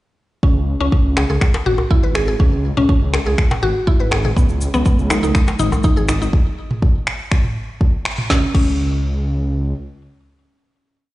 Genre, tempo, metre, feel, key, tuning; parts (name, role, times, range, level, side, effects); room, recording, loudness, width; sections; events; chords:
afro house; 122 BPM; 4/4; straight; C# minor; A4 = 440 Hz
mallet-like synth pluck; arpeggios; 0.4-8.7 s; B3 to B4; -21 LUFS; equal; chorus, sidechain pumping, digital delay
dark detuned saw bass; bass; 0.4-9.7 s; G#1 to C#2; -20 LUFS; equal; sidechain pumping
electronic kick drum; drums; 0.4-8.7 s; -15 LUFS; equal; small room ambience
afro-pop drum kit; drums; 1.2-8.7 s; crash cymbal, finger snaps, snare drum, toms; -23 LUFS; equal; small room ambience
djembe; percussion; 1.2-6.2 s; -24 LUFS; left 1 dB
tube shaker; percussion; 4.4-6.3 s; -34 LUFS; left 2 dB
congas; percussion; 4.7-5.8 s; -24 LUFS; right 2 dB
light reverb, small room reverb; played on a big sound system in a bare room, large studio reverb, nothing above 10.4 kHz; -14 LUFS; side -17 dB against mid
0.4-8.3 drop; 8.3-11.1 final note
drop 0.4-8.3; band accent 8.1
0.4 C#5; 4.4 N.C.